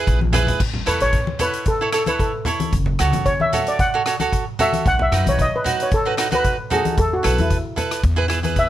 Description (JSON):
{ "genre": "calypso", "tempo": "113 BPM", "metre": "4/4", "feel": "swing 53% on 16ths", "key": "A major", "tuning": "A4 = 441 Hz", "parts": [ { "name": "steel pan", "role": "melody", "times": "0.0-8.7 s", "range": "E4 to F#5", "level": "-21 LUFS", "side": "equal", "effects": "none" }, { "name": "cavaquinho", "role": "accompaniment", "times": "0.0-8.7 s", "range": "D#4 to C#5", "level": "-22 LUFS", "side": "right 5 dB", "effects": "none" }, { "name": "upright bass", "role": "bass", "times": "0.1-8.7 s", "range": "F#1 to F#2", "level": "-21 LUFS", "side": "equal", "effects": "none" }, { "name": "street-band drum kit", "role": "drums", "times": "0.1-8.7 s", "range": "crash cymbal, hi-hat, kick drum, rim click", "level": "-24 LUFS", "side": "equal", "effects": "none" }, { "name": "congas", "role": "percussion", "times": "0.2-8.6 s", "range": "none", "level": "-26 LUFS", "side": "left 4 dB", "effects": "none" } ], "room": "light reverb", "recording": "close, detailed microphones", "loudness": "-17 LUFS", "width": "side -13 dB against mid", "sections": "0.6-8.7 A section", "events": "drum fill 0.2-0.6; steel pan solo 0.6-8.7", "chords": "0.0 E; 0.6 A; 2.7 F#m; 4.9 B7; 7.0 Esus4; 8.0 E", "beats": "0.08 | 0.61 1.14 1.67 2.20 | 2.73 3.26 3.79 4.33 | 4.86 5.39 5.92 6.45 | 6.98 7.51 8.04 8.57" }